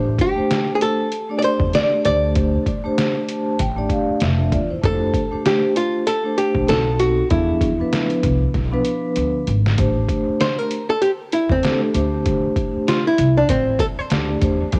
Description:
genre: hip hop, jazz-hop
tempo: 97 BPM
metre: 4/4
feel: swing 59% on 16ths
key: unclear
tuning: A4 = 440 Hz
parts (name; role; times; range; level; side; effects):
- vibraphone with medium mallets; accompaniment; 0.0-14.8 s; F3 to A5; -24 LUFS; equal; cassette tape
- upright bass; bass; 0.0-14.8 s; F1 to F2; -23 LUFS; equal; none
- archtop guitar, miked and amplified; melody; 0.2-14.3 s; C4 to D5; -22 LUFS; equal; cassette tape
- trip hop sampler-style drum kit; drums; 0.2-14.8 s; hi-hat, kick drum, snare drum; -26 LUFS; equal; overdrive, cassette tape
room: light reverb, small room ambience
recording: home recording on cassette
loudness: -19 LUFS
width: mono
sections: 0.0-9.8 A section; 9.8-14.8 B section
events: vibraphone fill 3.0-4.8; drum fill 9.2-9.8; hollow-body jazz guitar solo 9.8-14.8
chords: 0.0 Am7; 2.0 Dm9; 4.8 Fadd9; 6.7 B7b9; 7.3 E7b9; 9.8 Am7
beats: 0.50 1.12 1.74 | 2.36 2.98 3.59 4.21 | 4.83 5.45 6.07 6.69 | 7.31 7.92 8.54 9.16 | 9.78 10.40 11.02 11.64 | 12.25 12.87 13.49 14.11 | 14.73

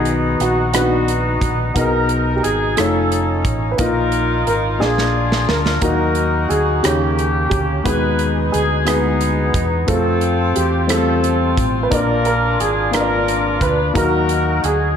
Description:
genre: slow gospel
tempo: 59 BPM (dotted quarters)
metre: 6/8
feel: straight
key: Eb harmonic minor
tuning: A4 = 440 Hz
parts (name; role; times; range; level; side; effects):
- clear horn section; melody; 0.0-15.0 s; Bb3 to Cb5; -20 LUFS; left 1 dB; tape echo
- dark baby grand piano; melody; 0.0-15.0 s; F#4 to Cb5; -23 LUFS; right 3 dB; none
- warm upright piano; accompaniment; 0.0-15.0 s; Bb2 to D#5; -21 LUFS; left 3 dB; none
- fingered electric bass; bass; 0.0-15.0 s; F1 to F2; -21 LUFS; right 1 dB; none
- modern studio drum kit; drums; 0.1-14.8 s; hi-hat, kick drum, rim click, snare drum; -23 LUFS; right 1 dB; none
room: moderate plate reverb, RT60 1.7 s, studio reverb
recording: dreamy mix soaked in reverb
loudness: -15 LUFS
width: side -8 dB against mid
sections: 0.0-15.0 A section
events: drum fill 4.8-5.8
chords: 0.0 B; 1.8 Abm/Cb; 2.8 Faug7; 3.8 Bbsus4; 4.8 Bb; 5.8 Ebm; 6.8 Eb7; 7.9 Abm; 9.9 F; 11.9 Bb; 14.0 Ebm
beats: 0.74 | 1.76 2.77 | 3.79 4.81 | 5.83 6.84 | 7.86 8.88 | 9.89 10.91 | 11.92 12.94 | 13.95

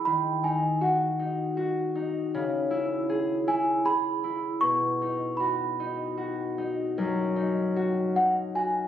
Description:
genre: children's music, lullaby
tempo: 78 BPM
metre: 3/4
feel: rubato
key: unclear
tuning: A4 = 441 Hz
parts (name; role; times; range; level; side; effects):
- celesta; melody; 0.0-8.7 s; F#5 to C#6; -26 LUFS; right 1 dB; none
- concert harp; accompaniment; 0.0-8.9 s; F#2 to G#4; -27 LUFS; left 2 dB; none
room: moderate recital hall reverb, RT60 1.5 s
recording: recorded on a phone in the room, studio reverb, compression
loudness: -25 LUFS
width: side -10 dB against mid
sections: 0.0-8.9 A section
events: none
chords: 0.1 D#madd11; 2.3 C#m; 4.6 B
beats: | 0.05 0.81 1.56 | 2.32 3.09 3.85 | 4.62 5.39 6.17 | 6.97 7.76 8.54

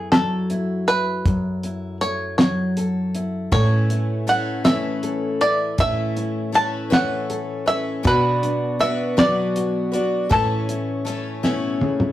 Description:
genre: indie folk with a building arrangement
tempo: 53 BPM (dotted quarters)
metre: 6/8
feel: straight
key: A major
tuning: A4 = 440 Hz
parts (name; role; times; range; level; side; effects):
- bluegrass banjo; melody; 0.0-12.1 s; G#4 to A5; -22 LUFS; equal; none
- fingerpicked steel-string acoustic guitar; accompaniment; 0.0-12.1 s; F#2 to A4; -26 LUFS; left 1 dB; none
- dark cello; bass; 0.0-12.1 s; F#2 to B2; -24 LUFS; equal; none
- cloth-damped thuddy drum kit; drums; 0.1-12.1 s; hi-hat, kick drum, snare drum, toms; -20 LUFS; equal; none
- picked twelve-string acoustic guitar; accompaniment; 3.5-12.1 s; B2 to B4; -25 LUFS; left 2 dB; none
room: moderate studio reverb, RT60 0.5 s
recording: rough rehearsal-room recording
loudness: -19 LUFS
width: side -13 dB against mid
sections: 0.0-12.1 A section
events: drum fill 11.4-12.1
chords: 0.0 F#m7; 3.5 Aadd9; 8.1 Bm; 10.3 Aadd9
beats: 0.13 | 1.26 2.39 | 3.52 4.65 | 5.79 6.92 | 8.05 9.18 | 10.31 11.44

